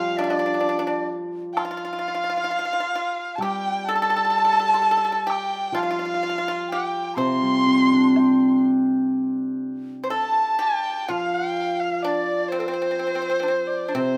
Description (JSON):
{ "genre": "chinese traditional, Chinese chamber ensemble", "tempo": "64 BPM", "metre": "4/4", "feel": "rubato", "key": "C zhi mode", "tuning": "A4 = 440 Hz", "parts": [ { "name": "dark erhu", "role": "melody", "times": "0.0-14.2 s", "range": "C5 to C6", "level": "-28 LUFS", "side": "equal", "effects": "none" }, { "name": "large dizi", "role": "second line", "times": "0.0-14.2 s", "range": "A4 to C6", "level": "-29 LUFS", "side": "equal", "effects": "none" }, { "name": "pipa", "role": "second line", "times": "0.0-14.2 s", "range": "C4 to C5", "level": "-31 LUFS", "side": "equal", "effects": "none" }, { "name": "hammered dulcimer", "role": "accompaniment", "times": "0.0-14.2 s", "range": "C3 to G4", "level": "-26 LUFS", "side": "equal", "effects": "none" }, { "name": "woodblock", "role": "percussion", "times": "1.6-8.4 s", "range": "none", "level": "-33 LUFS", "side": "equal", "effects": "none" } ], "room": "light reverb", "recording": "close, detailed microphones", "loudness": "-23 LUFS", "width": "mono", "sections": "0.0-9.1 A section; 9.1-14.2 B section", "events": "none", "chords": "none" }